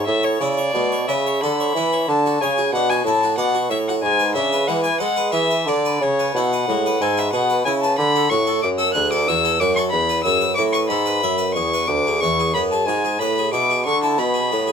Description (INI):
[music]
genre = classical, baroque-style sonata movement with continuo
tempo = 61 BPM (dotted quarters)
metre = 12/8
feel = rubato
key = unclear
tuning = A4 = 439 Hz
[part]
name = rich violin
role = melody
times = 0.0-14.7 s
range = C#5 to F#6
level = -21 LUFS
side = left 4 dB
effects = none
[part]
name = harpsichord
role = accompaniment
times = 0.0-14.7 s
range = D2 to E5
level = -23 LUFS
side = equal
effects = none
[part]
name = clear bassoon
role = bass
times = 0.0-14.7 s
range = D2 to G#3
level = -21 LUFS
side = right 2 dB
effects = none
[sound]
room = light reverb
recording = close, detailed microphones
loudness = -17 LUFS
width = side -7 dB against mid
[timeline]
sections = 0.0-14.7 A section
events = none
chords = 0.0 A; 2.1 Dmaj7; 4.0 G#dim; 6.0 C#m7; 8.0 D; 9.9 E; 11.9 E7/D